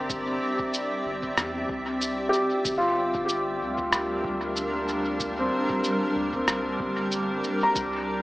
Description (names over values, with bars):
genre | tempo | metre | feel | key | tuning
ambient dub | 94 BPM | 4/4 | swing 55% on 16ths | G dorian | A4 = 437 Hz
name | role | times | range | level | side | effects
granular cloud pad | sustained chords | 0.0-8.2 s | G3 to E5 | -28 LUFS | equal | built-in reverb
felt-muted upright piano | arpeggios | 0.0-8.2 s | C4 to Bb5 | -28 LUFS | equal | analog delay
soft dub sub bass | bass | 0.0-8.2 s | G1 to E2 | -42 LUFS | equal | tube saturation
electronic kick drum | drums | 0.1-7.9 s | none | -39 LUFS | equal | none
electronic shaker and rim click | drums | 0.1-7.9 s | none | -28 LUFS | equal | dub echo
drifting glass-harmonics texture | texture | 3.6-8.2 s | G4 | -35 LUFS | right 2 dB | chorus, built-in reverb
room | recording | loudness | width
light reverb | echo-heavy mix, small speaker sound | -24 LUFS | side -19 dB against mid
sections
0.0-8.2 A section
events
none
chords
0.0 C7; 2.6 Gm7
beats
| 0.10 0.73 1.37 2.01 | 2.65 3.29 3.93 4.57 | 5.20 5.84 6.48 7.12 | 7.76